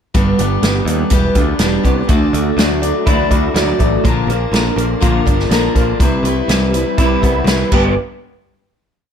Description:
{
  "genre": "folk rock and heartland rock",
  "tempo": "122 BPM",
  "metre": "4/4",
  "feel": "straight",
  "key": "unclear",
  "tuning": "A4 = 440 Hz",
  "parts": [
    { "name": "picked steel-string acoustic guitar", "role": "accompaniment", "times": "0.1-7.9 s", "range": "G2 to D5", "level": "-17 LUFS", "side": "left 3 dB", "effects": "none" },
    { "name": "modern bright picked electric bass", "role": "bass", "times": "0.1-8.0 s", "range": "E1 to Eb2", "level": "-19 LUFS", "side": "equal", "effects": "none" },
    { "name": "natural country drum kit", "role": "drums", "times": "0.1-7.8 s", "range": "crash cymbal, hi-hat, kick drum, snare drum", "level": "-16 LUFS", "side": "equal", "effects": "none" },
    { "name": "electric guitar through a small old amp", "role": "riff", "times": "0.2-7.9 s", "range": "E2 to G4", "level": "-19 LUFS", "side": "right 3 dB", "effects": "ensemble chorus" }
  ],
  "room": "light reverb",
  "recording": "dark, warm production",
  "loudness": "-12 LUFS",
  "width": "side -8 dB against mid",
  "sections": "0.1-8.0 verse; 8.0-9.1 final hit",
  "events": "none",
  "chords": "0.1 G; 1.1 Em7; 2.1 Dadd9; 4.0 Bb; 6.0 Cmaj7; 7.7 G; 8.0 N.C."
}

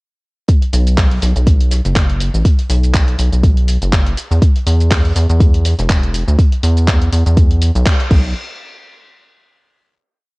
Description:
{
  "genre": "deep house",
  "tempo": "122 BPM",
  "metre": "4/4",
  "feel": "swing 56% on 16ths",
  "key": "unclear",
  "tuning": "A4 = 441 Hz",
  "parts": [
    { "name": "deep house drum kit", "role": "drums", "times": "0.5-8.2 s", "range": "crash cymbal, handclaps, hi-hat, shaker", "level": "-22 LUFS", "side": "equal", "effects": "overdrive, vintage 12-bit sampler grit" },
    { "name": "electronic kick drum", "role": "drums", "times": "0.5-8.2 s", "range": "none", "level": "-12 LUFS", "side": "equal", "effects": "vintage 12-bit sampler grit" },
    { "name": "soft brush drum kit", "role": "drums", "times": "0.5-8.1 s", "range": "hi-hat, snare drum", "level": "-31 LUFS", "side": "right 2 dB", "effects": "none" },
    { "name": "rubbery square bass", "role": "bass", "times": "0.7-8.3 s", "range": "E1 to E2", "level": "-13 LUFS", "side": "equal", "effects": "sidechain pumping" }
  ],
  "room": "little or no reverb",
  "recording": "cassette tape",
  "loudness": "-11 LUFS",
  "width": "side -27 dB against mid",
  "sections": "0.5-8.4 drop; 8.4-10.3 final hit",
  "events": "drop 0.5-8.4; band accent 7.9",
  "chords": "none"
}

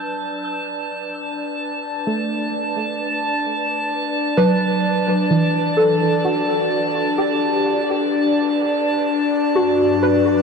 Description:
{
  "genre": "ambient",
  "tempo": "64 BPM",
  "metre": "4/4",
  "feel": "straight",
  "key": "G major",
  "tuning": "A4 = 440 Hz",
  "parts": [
    { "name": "airy breathy pad", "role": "sustained chords", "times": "0.0-10.4 s", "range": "G2 to D5", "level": "-21 LUFS", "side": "left 3 dB", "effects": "chorus" },
    { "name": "soft round pluck", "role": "arpeggios", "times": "0.0-10.4 s", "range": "E3 to G6", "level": "-20 LUFS", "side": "right 1 dB", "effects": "ensemble chorus, diffuse ambient delay" },
    { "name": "drifting glass-harmonics texture", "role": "texture", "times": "0.0-10.4 s", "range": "A5", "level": "-24 LUFS", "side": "right 1 dB", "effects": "chorus, built-in reverb" }
  ],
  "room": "wet huge ambient reverb, RT60 7.2 s",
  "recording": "dreamy mix soaked in reverb",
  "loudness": "-17 LUFS",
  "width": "side -5 dB against mid",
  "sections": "0.0-10.4 A section",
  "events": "fade-in on analog synth pad 0.0-10.4",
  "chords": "0.0 Gmaj7; 9.6 D/G"
}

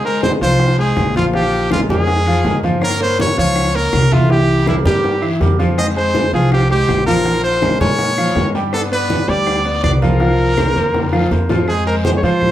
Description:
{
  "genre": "latin, salsa",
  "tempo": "162 BPM",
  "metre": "4/4",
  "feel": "straight",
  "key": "F minor",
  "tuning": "A4 = 439 Hz",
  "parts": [
    { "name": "brilliant trumpet", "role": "melody", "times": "0.0-12.5 s", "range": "E4 to Eb5", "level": "-18 LUFS", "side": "equal", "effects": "none" },
    { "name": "bright grand piano", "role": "accompaniment", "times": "0.0-12.5 s", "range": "E3 to G5", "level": "-18 LUFS", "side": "equal", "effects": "none" },
    { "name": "congas", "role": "percussion", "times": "0.0-12.5 s", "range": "none", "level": "-22 LUFS", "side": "equal", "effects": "none" },
    { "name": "bongos", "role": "percussion", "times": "0.2-11.6 s", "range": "none", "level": "-25 LUFS", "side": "left 3 dB", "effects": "none" },
    { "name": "guiro", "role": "percussion", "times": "0.2-12.5 s", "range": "none", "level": "-35 LUFS", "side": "left 3 dB", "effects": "none" },
    { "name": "upright bass", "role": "bass", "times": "0.4-12.5 s", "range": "Bb1 to Bb2", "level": "-18 LUFS", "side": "equal", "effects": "none" },
    { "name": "claves", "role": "percussion", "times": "0.6-12.5 s", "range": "none", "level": "-34 LUFS", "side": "left 1 dB", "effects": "none" }
  ],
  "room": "wet studio reverb, RT60 0.5 s",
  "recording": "heard from further back in the room",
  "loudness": "-13 LUFS",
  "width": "side -12 dB against mid",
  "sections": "0.0-11.7 A section",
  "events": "drum fill 10.8-11.7",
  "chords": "0.0 Fm; 1.3 Bb5; 2.8 Gm7b5; 4.3 C7; 5.8 Fmadd9; 7.3 Bbm9; 8.7 G7; 10.2 C7sus4; 11.7 Fm"
}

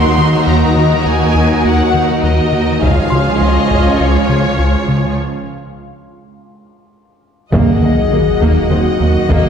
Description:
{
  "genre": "cinematic, hybrid orchestral and electronic film score",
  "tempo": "102 BPM",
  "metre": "4/4",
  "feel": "straight",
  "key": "Eb dorian",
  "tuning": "A4 = 441 Hz",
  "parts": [
    { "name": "clear symphonic violin section", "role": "melody", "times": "0.0-9.5 s", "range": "Db5 to C6", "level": "-20 LUFS", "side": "left 1 dB", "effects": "none" },
    { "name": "warm symphonic violin section", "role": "second line", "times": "0.0-9.5 s", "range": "Gb4 to Eb5", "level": "-22 LUFS", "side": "equal", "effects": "none" },
    { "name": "rich symphonic viola section", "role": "accompaniment", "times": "0.0-9.5 s", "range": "F3 to F4", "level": "-21 LUFS", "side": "right 2 dB", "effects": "none" },
    { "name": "airy breathy pad", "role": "sustained chords", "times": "0.0-9.5 s", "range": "Ab3 to F5", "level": "-19 LUFS", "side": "equal", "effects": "chorus, phaser" },
    { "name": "rubbery square bass", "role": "riff", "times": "0.0-9.5 s", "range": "Db2 to Eb3", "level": "-16 LUFS", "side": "left 1 dB", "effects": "none" },
    { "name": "rich symphonic cello section", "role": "bass", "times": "0.0-9.4 s", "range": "Db2 to Eb2", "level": "-18 LUFS", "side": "right 2 dB", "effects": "none" },
    { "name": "clear concert grand piano", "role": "texture", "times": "0.0-9.5 s", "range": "C4 to C6", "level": "-28 LUFS", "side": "left 3 dB", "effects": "ping-pong delay" },
    { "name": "taiko ensemble", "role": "drums", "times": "2.8-4.0, 7.5-9.5 s", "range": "none", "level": "-18 LUFS", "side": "equal", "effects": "none" },
    { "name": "dark trombone section", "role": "sustained chords", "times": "7.5-9.5 s", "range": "Bb2 to Gb3", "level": "-24 LUFS", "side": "right 2 dB", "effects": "none" },
    { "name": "mellow French horn section", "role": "sustained chords", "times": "7.5-9.5 s", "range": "Gb4 to Ab4", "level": "-18 LUFS", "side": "left 5 dB", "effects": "none" },
    { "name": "warm symphonic double bass section", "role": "bass", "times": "7.5-9.4 s", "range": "Eb2", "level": "-20 LUFS", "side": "right 2 dB", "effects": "none" },
    { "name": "sub drop", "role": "sound effects", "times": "7.7-9.5 s", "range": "none", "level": "-22 LUFS", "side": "equal", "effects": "none" }
  ],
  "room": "wet scoring stage reverb, RT60 1.6 s",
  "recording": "heard from further back in the room",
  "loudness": "-10 LUFS",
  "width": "side -7 dB against mid",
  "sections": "0.0-7.5 A section; 7.5-9.5 B section",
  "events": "break 5.2-7.5; impact 7.5-9.5",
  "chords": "0.0 Ebm; 2.8 Db; 7.5 Ebm"
}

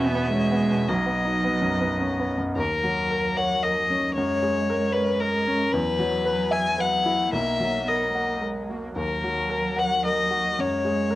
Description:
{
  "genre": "neoclassical piano and strings",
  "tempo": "112 BPM",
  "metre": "3/4",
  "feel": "rubato",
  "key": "unclear",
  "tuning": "A4 = 440 Hz",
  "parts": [
    { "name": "rich violin", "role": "melody", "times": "0.0-11.2 s", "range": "A#4 to G#5", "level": "-24 LUFS", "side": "left 3 dB", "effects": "cassette tape, plate reverb" },
    { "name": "rich cello", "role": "second line", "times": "0.0-11.2 s", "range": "F#3 to B3", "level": "-29 LUFS", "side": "right 2 dB", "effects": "cassette tape" },
    { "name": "bright baby grand piano", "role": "accompaniment", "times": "0.0-11.2 s", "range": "B1 to F#5", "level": "-26 LUFS", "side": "equal", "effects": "cassette tape" }
  ],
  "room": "wet studio ambience, RT60 0.5 s",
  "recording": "home recording on cassette",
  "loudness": "-22 LUFS",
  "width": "side -15 dB against mid",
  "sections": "0.0-2.6 A section; 2.6-11.2 B section",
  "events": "none",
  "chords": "0.0 Esus2; 0.9 B; 2.6 D#m7; 4.2 F#add9; 5.7 Esus2; 7.3 Bmaj7; 9.0 D#m; 10.6 F#sus2"
}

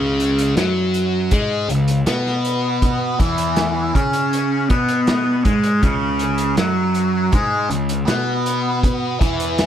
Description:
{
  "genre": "psychedelic rock",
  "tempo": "80 BPM",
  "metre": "4/4",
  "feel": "straight",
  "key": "unclear",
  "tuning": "A4 = 440 Hz",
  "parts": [
    { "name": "fuzz guitar", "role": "riff", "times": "0.0-9.7 s", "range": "C#3 to C#4", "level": "-19 LUFS", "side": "equal", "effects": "distortion, phaser" },
    { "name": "fuzz picked electric bass", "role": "bass", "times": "0.0-9.7 s", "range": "C#2 to C#3", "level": "-22 LUFS", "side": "equal", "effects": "overdrive" },
    { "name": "vintage drum kit", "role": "drums", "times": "0.2-9.7 s", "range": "hi-hat, kick drum, snare drum", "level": "-21 LUFS", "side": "equal", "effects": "none" }
  ],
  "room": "light reverb",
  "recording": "none",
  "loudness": "-16 LUFS",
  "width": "side -10 dB against mid",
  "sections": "0.0-9.7 A section",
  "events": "none",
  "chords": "0.0 C#5"
}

